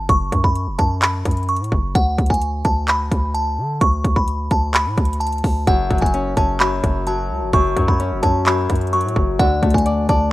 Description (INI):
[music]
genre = hip hop, trap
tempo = 129 BPM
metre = 4/4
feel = half-time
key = F# minor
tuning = A4 = 440 Hz
[part]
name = delicate synth tine bell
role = melody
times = 0.0-10.3 s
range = F#5 to C#6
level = -21 LUFS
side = right 1 dB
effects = chorus, low-pass filter
[part]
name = hard-hitting 808-style bass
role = bass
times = 0.0-10.3 s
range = E#1 to D3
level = -22 LUFS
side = equal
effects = none
[part]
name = trap drum kit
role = drums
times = 0.1-10.2 s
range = handclaps, hi-hat, kick drum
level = -19 LUFS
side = equal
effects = vintage 12-bit sampler grit
[part]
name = Celtic harp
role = accompaniment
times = 5.7-10.3 s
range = F#2 to D5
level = -21 LUFS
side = left 4 dB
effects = low-pass filter
[sound]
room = light reverb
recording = rough home demo mix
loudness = -16 LUFS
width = side -17 dB against mid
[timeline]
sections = 0.0-10.3 A section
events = none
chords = 0.0 F#5; 2.0 D5; 5.7 F#m; 9.4 D5